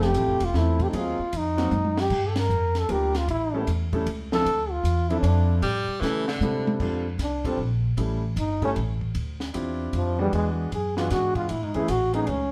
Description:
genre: jazz, small-group swing and bop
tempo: 153 BPM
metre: 3/4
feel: swing 65% on 8ths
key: unclear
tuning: A4 = 440 Hz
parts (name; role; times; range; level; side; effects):
- mellow trombone; melody; 0.0-12.5 s; F3 to Bb4; -28 LUFS; equal; none
- warm concert grand piano; accompaniment; 0.0-12.3 s; E3 to Bb4; -31 LUFS; equal; none
- upright bass; bass; 0.0-12.5 s; E1 to C#3; -29 LUFS; equal; none
- compact cocktail drum kit; drums; 0.0-12.4 s; crash cymbal, hi-hat, kick drum, ride cymbal, snare drum, toms; -36 LUFS; equal; none
- edgy tenor saxophone; second line; 5.6-6.8 s; D3 to G3; -31 LUFS; equal; none
room: moderate studio reverb, RT60 0.8 s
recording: heard from further back in the room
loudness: -25 LUFS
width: mono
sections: 0.0-6.8 A section; 6.8-12.5 B section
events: drum fill 1.7-2.1, 6.0-6.8; band accent 2.3; trombone solo 6.8-12.5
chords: 0.0 Fmaj7; 0.9 G#9; 2.1 Gm7; 3.3 A7; 4.5 Dm9; 5.6 A7; 6.4 Cadd9; 6.8 F69; 8.0 A7; 9.1 Dm11; 10.3 E9; 11.5 Amaj7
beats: 0.14 0.54 | 0.93 1.32 1.71 | 2.10 2.50 2.89 | 3.28 3.67 4.06 | 4.45 4.84 5.24 | 5.63 6.02 6.41 | 6.80 7.19 7.58 | 7.98 8.37 8.76 | 9.15 9.54 9.93 | 10.32 10.71 11.10 | 11.49 11.88 12.27

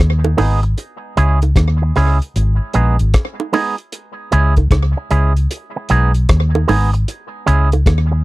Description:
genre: roots reggae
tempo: 76 BPM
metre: 4/4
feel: swing 64% on 16ths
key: C# dorian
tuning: A4 = 440 Hz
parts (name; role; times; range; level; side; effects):
- vintage muted fingered electric bass; bass; 0.0-8.2 s; G#1 to D#2; -13 LUFS; equal; tube saturation
- bongos; percussion; 0.2-8.1 s; none; -20 LUFS; right 6 dB; none
- electric guitar with an envelope filter; accompaniment; 0.4-8.2 s; G#3 to G#4; -19 LUFS; right 4 dB; tape echo
- cloth-damped thuddy drum kit; drums; 0.4-8.1 s; hi-hat, kick drum, rim click; -17 LUFS; equal; slapback echo
room: little or no reverb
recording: dry, close 1970s-style studio recording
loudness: -13 LUFS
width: side -19 dB against mid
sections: 0.0-8.2 A section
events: none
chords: 0.0 G#m; 0.8 C#m; 2.4 G#m; 3.9 C#m; 5.5 G#m; 7.1 C#m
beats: | 0.78 1.57 2.35 3.14 | 3.93 4.72 5.51 6.29 | 7.08 7.87

